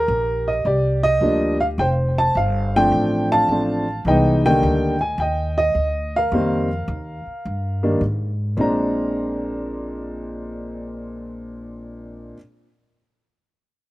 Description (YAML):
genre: jazz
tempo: 106 BPM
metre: 4/4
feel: swing 68% on 8ths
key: Bb mixolydian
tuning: A4 = 440 Hz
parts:
  - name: warm upright piano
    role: melody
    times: 0.0-12.4 s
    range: Bb2 to Bb5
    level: -20 LUFS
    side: equal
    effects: none
  - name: upright bass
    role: bass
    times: 0.0-12.3 s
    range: F1 to Ab2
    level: -24 LUFS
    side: equal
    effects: none
room: little or no reverb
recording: recorded outdoors, with no room sound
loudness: -18 LUFS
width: side -17 dB against mid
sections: 0.0-8.6 A section; 8.6-10.9 B section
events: none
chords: 0.0 Ebmaj9; 1.8 Dm7; 4.1 Cm9; 6.3 F9sus4; 8.6 Bb9